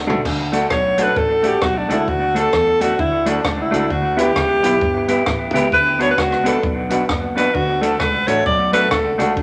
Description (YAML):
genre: ska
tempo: 132 BPM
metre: 4/4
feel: swing 60% on 8ths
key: D major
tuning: A4 = 443 Hz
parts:
  - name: fingered electric bass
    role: bass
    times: 0.0-9.4 s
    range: F#1 to E2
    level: -30 LUFS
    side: equal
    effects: none
  - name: semi-hollow electric guitar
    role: accompaniment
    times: 0.1-9.3 s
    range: A3 to G4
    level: -24 LUFS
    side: equal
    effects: spring reverb, analog delay
  - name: dark upright piano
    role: stabs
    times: 0.1-9.3 s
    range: D4 to B4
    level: -28 LUFS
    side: equal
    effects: none
  - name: compact cocktail drum kit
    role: drums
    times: 0.1-9.4 s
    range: crash cymbal, hi-hat, kick drum, rim click, toms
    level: -26 LUFS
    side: equal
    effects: analog delay
  - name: mellow electric guitar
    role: riff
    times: 0.2-9.4 s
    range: F#2 to E3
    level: -34 LUFS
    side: equal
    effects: spring reverb, analog delay
  - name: breathy alto saxophone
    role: melody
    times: 0.7-9.2 s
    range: D4 to D5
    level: -20 LUFS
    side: equal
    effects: none
room: wet large studio reverb, RT60 0.9 s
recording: none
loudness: -17 LUFS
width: mono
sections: 0.3-9.4 A section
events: drum fill 0.0; alto saxophone solo 0.3-9.4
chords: 0.3 D; 3.9 Em; 5.7 Bm; 7.5 D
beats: | 0.25 0.71 1.17 1.62 | 2.08 2.53 2.99 3.44 | 3.90 4.36 4.81 5.27 | 5.72 6.18 6.64 7.09 | 7.55 8.01 8.46 8.92 | 9.37